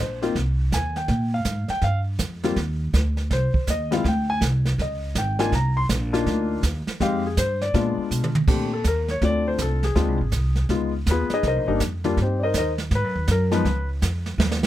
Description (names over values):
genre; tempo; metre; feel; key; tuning
jazz piano trio; 162 BPM; 4/4; swing 64% on 8ths; unclear; A4 = 438 Hz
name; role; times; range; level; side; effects
warm concert grand piano; melody; 0.0-13.9 s; F3 to C6; -24 LUFS; left 3 dB; none
upright bass; bass; 0.0-14.6 s; G1 to Cb3; -24 LUFS; equal; none
jazz brush drum kit; drums; 0.2-14.7 s; brushed snare drum, crash cymbal, hi-hat, kick drum, snare drum, toms; -25 LUFS; right 2 dB; none
room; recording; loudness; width
little or no reverb; close, detailed microphones; -20 LUFS; side -13 dB against mid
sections
0.0-8.5 A section; 8.5-14.7 B section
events
drum fill 8.1-8.5; grand piano solo 8.5-14.7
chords
0.0 Ab; 1.1 Bb5; 2.6 N.C.; 4.0 Abmaj7#11 (rootless); 4.8 Dbsus2; 5.5 Cm11; 7.0 Fm9; 7.7 Bb7b9; 8.5 Bbmaj9; 10.0 Dm7b5; 10.7 Db9; 11.4 Cm7; 12.9 Abm7; 13.6 Db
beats
0.34 0.71 | 1.08 1.46 1.83 2.20 | 2.57 2.94 3.31 3.67 | 4.04 4.42 4.79 5.16 | 5.52 5.89 6.26 6.63 | 7.00 7.37 7.74 8.11 | 8.48 8.85 9.22 9.59 | 9.96 10.33 10.70 11.06 | 11.44 11.80 12.17 12.54 | 12.91 13.28 13.65 14.02 | 14.39